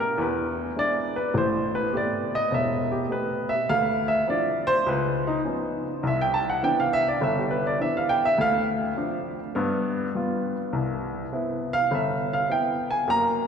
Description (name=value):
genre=solo jazz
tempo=102 BPM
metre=4/4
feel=swing 67% on 8ths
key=C major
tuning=A4 = 440 Hz
part: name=warm upright piano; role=solo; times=0.0-13.5 s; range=E1 to A#5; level=-22 LUFS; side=equal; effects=none
room=wet cathedral reverb, RT60 4.5 s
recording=recorded in a church or concert hall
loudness=-23 LUFS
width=side -7 dB against mid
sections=0.0-10.7 A section; 10.7-13.5 A section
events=upright piano solo 0.0-13.5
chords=0.2 E7b13; 1.3 Am9; 3.7 Dm9; 4.9 Db9; 6.0 Cmaj9; 8.4 Dm7; 9.6 G7; 10.7 Cmaj7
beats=0.17 0.76 | 1.35 1.93 2.52 3.10 | 3.69 4.28 4.87 5.45 | 6.04 6.62 7.21 7.80 | 8.38 8.97 9.56 10.15 | 10.73 11.32 11.91 12.49 | 13.08